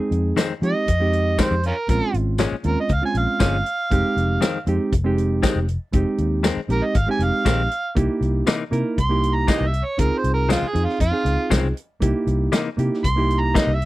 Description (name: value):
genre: straight-eighth soul blues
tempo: 118 BPM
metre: 4/4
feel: straight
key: F minor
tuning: A4 = 440 Hz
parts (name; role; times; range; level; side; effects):
- bright reed electric piano; accompaniment; 0.0-13.8 s; Ab3 to Bb4; -24 LUFS; right 2 dB; none
- vintage muted fingered electric bass; bass; 0.1-13.9 s; F1 to F3; -22 LUFS; left 1 dB; none
- warm soul drum kit; drums; 0.1-13.9 s; hi-hat, kick drum, snare drum, tambourine; -22 LUFS; equal; none
- direct-recorded clean electric guitar; stabs; 0.4-13.7 s; F2 to D#4; -23 LUFS; left 5 dB; slapback echo
- overdriven harmonica; second line; 0.6-13.9 s; Db4 to C6; -24 LUFS; right 2 dB; none
room: little or no reverb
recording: none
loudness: -18 LUFS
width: side -17 dB against mid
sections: 0.0-13.9 A section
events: harmonica solo 0.0-13.9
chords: 0.0 Fm7; 1.9 Bbm7; 3.9 Fm7; 8.0 C7#9; 10.0 Dbmaj7; 12.0 C7#9